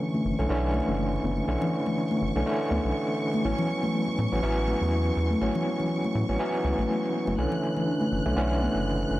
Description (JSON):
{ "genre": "deep house", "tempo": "122 BPM", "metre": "4/4", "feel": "swing 56% on 16ths", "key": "B minor", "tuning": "A4 = 440 Hz", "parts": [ { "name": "overdriven tine electric piano", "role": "stabs", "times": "0.0-9.2 s", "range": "D3 to C#4", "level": "-27 LUFS", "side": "equal", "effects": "fast tremolo, tape echo" }, { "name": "rich symphonic violin section", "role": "texture", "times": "0.0-9.2 s", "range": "C#6 to F#6", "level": "-38 LUFS", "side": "right 1 dB", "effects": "none" }, { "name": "congas", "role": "percussion", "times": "0.1-8.7 s", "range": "none", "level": "-32 LUFS", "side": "left 2 dB", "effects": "overdrive" }, { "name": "rubbery square bass", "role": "bass", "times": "0.2-9.2 s", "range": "F#1 to A2", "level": "-28 LUFS", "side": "equal", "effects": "none" }, { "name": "soft round pluck", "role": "arpeggios", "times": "0.4-8.6 s", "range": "A3 to E4", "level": "-35 LUFS", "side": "left 2 dB", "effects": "lush chorus, tape echo" } ], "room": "digital ambience", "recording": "vinyl crackle", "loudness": "-24 LUFS", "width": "side -16 dB against mid", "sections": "0.0-9.2 A section", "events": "none", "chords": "0.0 Bm11; 3.4 A69; 7.4 Bm11" }